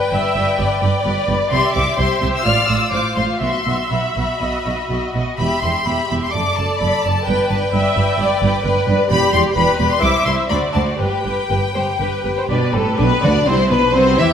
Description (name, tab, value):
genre	quick classical-period movement for string orchestra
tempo	118-132 BPM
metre	4/4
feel	rubato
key	unclear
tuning	A4 = 440 Hz
part	rich studio violin section	melody	0.0-14.3 s	C4 to F6	-21 LUFS	left 4 dB	none
part	warm studio violin section	second line	0.0-14.3 s	E4 to F5	-21 LUFS	left 3 dB	none
part	rich studio viola section	accompaniment	0.0-14.3 s	B3 to E5	-21 LUFS	equal	none
part	rich studio cello section	bass	0.1-14.3 s	C2 to E3	-22 LUFS	right 3 dB	none
part	warm studio double bass section	bass	0.1-14.3 s	E1 to E2	-23 LUFS	right 3 dB	none
room	wet scoring stage reverb, RT60 1.6 s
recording	none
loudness	-15 LUFS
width	side -8 dB against mid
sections	0.0-13.0 A section; 13.0-14.3 B section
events	none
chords	0.0 G; 1.5 C; 2.4 F/A; 3.4 Bsus4; 5.4 Em; 6.3 D/F#; 7.3 G; 9.1 Em7; 10.0 C; 10.5 D7; 11.0 G; 13.0 D7sus2